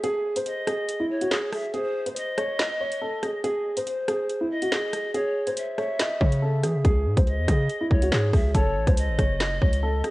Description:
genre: hip hop, drill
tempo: 141 BPM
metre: 4/4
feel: half-time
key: C# harmonic minor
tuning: A4 = 439 Hz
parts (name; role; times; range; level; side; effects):
- dark baby grand piano; melody; 0.0-10.1 s; E4 to D#5; -27 LUFS; equal; tape echo
- drill drum kit; drums; 0.0-10.1 s; handclaps, hi-hat, kick drum, rim click, snare drum; -25 LUFS; equal; none
- breathy large pan pipes; second line; 0.5-10.1 s; B#4 to E5; -31 LUFS; left 1 dB; tape echo
- hard-hitting 808-style bass; bass; 6.2-10.0 s; F#1 to E3; -24 LUFS; equal; none
room: light reverb, small room reverb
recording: worn, warbling old tape, cassette tape, warbly pitch drift, nothing above 10.3 kHz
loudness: -22 LUFS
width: side -19 dB against mid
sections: 0.0-10.1 A section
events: break 0.0-5.1; kick muted 5.1-6.0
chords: 0.0 N.C.; 5.1 C#m; 8.5 F#m

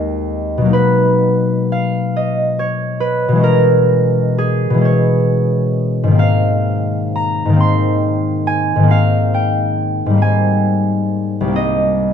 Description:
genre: classical, solo harp piece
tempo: 44 BPM (dotted quarters)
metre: 6/8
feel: uneven beats, rubato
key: Ab major from 6.2 s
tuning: A4 = 440 Hz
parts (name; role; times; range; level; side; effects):
- concert harp; solo; 0.0-12.1 s; C2 to C6; -13 LUFS; left 1 dB; none
room: little or no reverb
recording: close, detailed microphones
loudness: -13 LUFS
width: side -8 dB against mid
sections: 0.0-12.1 A section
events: none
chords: 0.0 Bb11/Eb; 0.7 Bmaj7; 3.4 Gb11/Cb; 6.2 Ab69; 10.2 Abmaj9; 11.6 Cm7

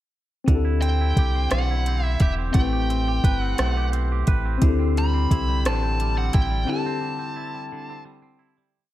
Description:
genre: slow six-eight R&B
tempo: 58 BPM (dotted quarters)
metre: 6/8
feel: straight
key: unclear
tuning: A4 = 440 Hz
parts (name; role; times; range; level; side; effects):
- tine electric piano; accompaniment; 0.4-8.8 s; C4 to B4; -29 LUFS; left 7 dB; lush chorus
- twangy electric guitar; second line; 0.5-8.9 s; D3 to B4; -32 LUFS; right 6 dB; analog delay
- rubbery square bass; bass; 0.5-6.7 s; E1 to D2; -23 LUFS; equal; none
- smooth R&B drum kit; drums; 0.5-6.5 s; hi-hat, kick drum, rim click; -21 LUFS; equal; none
- high-gain lead guitar; melody; 0.8-8.0 s; E5 to B5; -29 LUFS; equal; distortion
room: light reverb, digital ambience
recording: none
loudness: -20 LUFS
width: side -14 dB against mid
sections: 0.5-8.8 bridge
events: break 6.7-8.8; fade-out 6.7-8.8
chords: 0.5 D9sus4; 2.6 Am9; 4.6 D9sus4

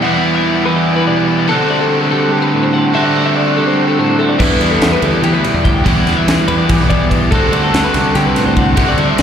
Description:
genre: math rock and midwest emo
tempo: 288 BPM (eighths)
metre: 7/8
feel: straight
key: unclear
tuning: A4 = 440 Hz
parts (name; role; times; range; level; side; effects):
- twelve-string electric guitar; accompaniment; 0.0-9.2 s; E2 to G4; -17 LUFS; right 3 dB; spring reverb
- twelve-string electric guitar; arpeggios; 0.0-9.2 s; G4 to G5; -19 LUFS; left 6 dB; slapback echo
- overdriven electric guitar; riff; 0.0-9.2 s; D3 to F#4; -14 LUFS; equal; spring reverb, slapback echo
- growling fingered electric bass; bass; 4.4-9.2 s; B1 to E3; -18 LUFS; equal; overdrive
- crisp fusion drum kit; drums; 4.4-9.2 s; crash cymbal, kick drum, ride cymbal, snare drum; -17 LUFS; equal; none
room: small room ambience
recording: live gig heard through the venue's PA, recital hall reverb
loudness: -11 LUFS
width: side -8 dB against mid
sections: 0.0-9.2 A section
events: none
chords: 0.0 Em9; 1.5 D7sus4; 4.4 Em9; 7.3 D7sus4

